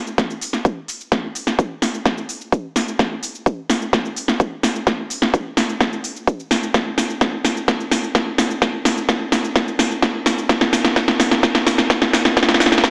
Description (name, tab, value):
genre	EDM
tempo	128 BPM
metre	4/4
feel	straight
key	none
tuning	none
part	big-room dance drum kit	drums	0.1-12.9 s	hi-hat, shaker, snare drum	-20 LUFS	equal	none
part	electronic kick drum	drums	0.2-12.9 s	none	-22 LUFS	equal	high-pass filter on kick
room	wet recital hall reverb, RT60 1.4 s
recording	high-pass filter, small speaker sound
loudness	-19 LUFS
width	mono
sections	0.0-12.9 A section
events	build-up 0.0-12.9; drum fill 0.0-12.9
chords	none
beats	0.18 0.65 | 1.12 1.59 2.06 2.52 | 2.99 3.46 3.93 4.40 | 4.87 5.34 5.81 6.28 | 6.74 7.21 7.68 8.15 | 8.62 9.09 9.56 10.03 | 10.49 10.96 11.43 11.90 | 12.37 12.84